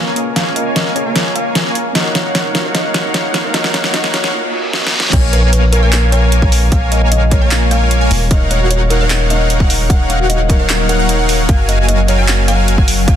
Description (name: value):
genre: future bass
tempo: 151 BPM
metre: 4/4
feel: half-time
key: Bb minor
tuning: A4 = 441 Hz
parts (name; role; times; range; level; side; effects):
- kalimba; melody; 0.0-13.2 s; Bb4 to Gb5; -22 LUFS; left 1 dB; sidechain pumping, low-pass filter, ping-pong delay
- glassy digital keys; accompaniment; 0.0-5.2 s; Bb3 to Eb5; -26 LUFS; right 4 dB; chorus, sidechain pumping, ping-pong delay
- shimmering ambient pad; sustained chords; 0.0-13.2 s; Db3 to F5; -26 LUFS; left 1 dB; chorus, built-in reverb, sidechain pumping
- soft supersaw; riff; 0.0-13.2 s; Gb3 to Ab5; -18 LUFS; equal; sidechain pumping, low-pass filter
- riser and reverse cymbal; sound effects; 1.9-5.1 s; none; -27 LUFS; right 1 dB; none
- dubstep drum kit; drums; 0.2-13.2 s; crash cymbal, handclaps, hi-hat, snare drum; -17 LUFS; equal; overdrive
- wide unison pluck; arpeggios; 5.1-13.2 s; Gb4 to Ab5; -26 LUFS; left 1 dB; analog chorus, sidechain pumping
- long sustained 808-style bass; bass; 5.1-13.2 s; Eb1 to Bb1; -14 LUFS; equal; tube saturation, sidechain pumping
- electronic kick drum; drums; 5.1-13.2 s; none; -12 LUFS; equal; overdrive
room: digital ambience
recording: dense, heavily limited modern master, high-pass filter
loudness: -11 LUFS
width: side -10 dB against mid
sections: 0.0-5.1 A section; 5.1-13.2 B section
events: build-up 0.0-5.1; drum fill 0.0-4.3, 4.7-5.1; filter sweep on supersaw synth 0.0-5.1; filter sweep 0.0-5.1; reverse cymbal 4.3-5.1; drop 5.1-13.2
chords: 0.0 Bbm7; 1.8 Ebm7; 5.1 Bbm7; 8.1 Ebm7; 11.5 Gbmaj7